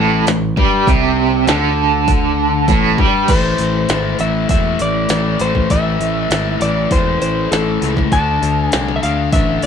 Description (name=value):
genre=classic rock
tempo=99 BPM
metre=4/4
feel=straight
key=A minor, A harmonic minor from 3.3 s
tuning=A4 = 436 Hz
part: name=distorted electric guitar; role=riff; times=0.0-9.7 s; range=A2 to D4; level=-19 LUFS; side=left 6 dB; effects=distortion
part: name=raw garage guitar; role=riff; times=0.0-3.3 s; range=A2 to G3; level=-16 LUFS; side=right 8 dB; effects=overdrive, tremolo
part: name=modern bright picked electric bass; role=bass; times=0.0-9.7 s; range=E1 to G2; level=-20 LUFS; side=equal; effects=none
part: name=minimal click drum kit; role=drums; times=0.3-9.7 s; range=crash cymbal, hi-hat, kick drum, snare drum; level=-18 LUFS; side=equal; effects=none
part: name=electric slide guitar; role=melody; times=3.3-9.7 s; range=A4 to A5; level=-20 LUFS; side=left 1 dB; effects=tape echo
room=moderate studio reverb, RT60 0.7 s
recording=band playing live in one room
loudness=-13 LUFS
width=side -7 dB against mid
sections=0.0-3.3 A section; 3.3-9.7 B section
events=kick and snare drop out 2.1-3.3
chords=0.0 Am; 8.1 D5